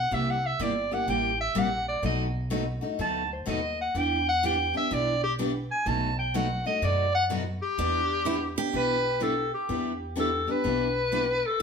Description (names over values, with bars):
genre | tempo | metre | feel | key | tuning
acoustic string swing (jazz manouche) | 125 BPM | 4/4 | swing 66% on 8ths | E minor | A4 = 440 Hz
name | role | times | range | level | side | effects
bright clarinet | melody | 0.0-11.6 s | G4 to A5 | -27 LUFS | left 1 dB | none
upright bass | bass | 0.0-11.4 s | G1 to F#2 | -33 LUFS | equal | none
picked steel-string acoustic guitar | accompaniment | 0.1-11.2 s | B2 to G4 | -31 LUFS | left 3 dB | none
picked steel-string acoustic guitar | accompaniment | 0.1-11.6 s | B2 to B4 | -37 LUFS | right 5 dB | none
picked steel-string acoustic guitar | second line | 7.8-11.6 s | D4 to G4 | -34 LUFS | right 7 dB | none
room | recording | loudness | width
wet stone room reverb, RT60 0.9 s | band playing live in one room | -25 LUFS | side -6 dB against mid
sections
0.0-7.8 A section; 7.8-11.6 B section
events
clarinet solo 0.0-7.8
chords
0.1 C7; 2.0 B7#9; 4.0 Em7; 5.9 B7; 7.8 Em7